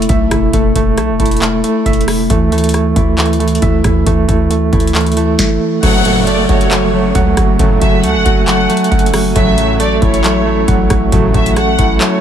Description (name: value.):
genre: hip hop, trap.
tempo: 136 BPM.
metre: 4/4.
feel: half-time.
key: F# minor.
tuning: A4 = 442 Hz.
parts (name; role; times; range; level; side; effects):
mellow electric guitar; accompaniment; 0.0-12.2 s; E3 to F#4; -17 LUFS; left 4 dB; low-pass filter.
overdriven tine electric piano; arpeggios; 0.0-12.2 s; A3 to F#5; -16 LUFS; right 9 dB; fast tremolo, low-pass filter, tape echo.
hard-hitting 808-style bass; bass; 0.0-12.0 s; E1 to D2; -17 LUFS; equal; none.
booming analog drum machine; drums; 0.0-12.1 s; crash cymbal, handclaps, hi-hat, kick drum, rim click, snare drum; -16 LUFS; equal; none.
warm studio violin section; second line; 5.8-12.2 s; C#5 to F#5; -18 LUFS; left 2 dB; tape echo.
dark analog pad; sustained chords; 6.3-12.2 s; F#3 to G#5; -22 LUFS; left 3 dB; chorus.
big bright polysynth; stabs; 5.8-11.5 s; A2 to F#3; -20 LUFS; left 3 dB; chorus.
downlifter; sound effects; 5.8-9.4 s; none; -24 LUFS; left 1 dB; none.
room: little or no reverb.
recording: none.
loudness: -10 LUFS.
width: side -9 dB against mid.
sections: 0.0-5.8 A section; 5.8-12.2 B section.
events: kick muted 12.0.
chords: 0.0 Esus4; 2.3 Dsus2; 5.8 F#m; 9.4 A6.